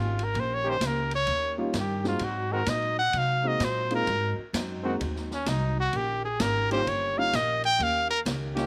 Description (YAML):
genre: jazz, big band swing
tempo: 129 BPM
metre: 4/4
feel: swing 66% on 8ths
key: Eb mixolydian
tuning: A4 = 439 Hz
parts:
  - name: bright trumpet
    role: melody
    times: 0.0-8.2 s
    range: Db4 to G5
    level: -29 LUFS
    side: equal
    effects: slapback echo
  - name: picked acoustic archtop guitar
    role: accompaniment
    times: 0.0-8.6 s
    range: Ab2 to G4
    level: -40 LUFS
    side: equal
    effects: slapback echo
  - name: upright bass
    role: bass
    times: 0.0-8.7 s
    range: G1 to C3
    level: -34 LUFS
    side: equal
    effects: none
  - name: swinging big-band drum kit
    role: drums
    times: 0.2-8.6 s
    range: hi-hat, kick drum, ride cymbal, snare drum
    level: -38 LUFS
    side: equal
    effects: none
  - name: bright trombone section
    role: sustained chords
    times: 0.6-8.7 s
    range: Eb3 to G4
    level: -33 LUFS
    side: equal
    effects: none
  - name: warm baby grand piano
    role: accompaniment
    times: 1.6-8.7 s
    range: G3 to Gb4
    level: -33 LUFS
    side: equal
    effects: none
room: little or no reverb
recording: recorded outdoors, with no room sound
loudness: -27 LUFS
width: mono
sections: 0.0-8.7 A section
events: trumpet solo 0.0-8.7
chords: 0.0 Eb7; 2.2 Ab7; 5.9 Eb7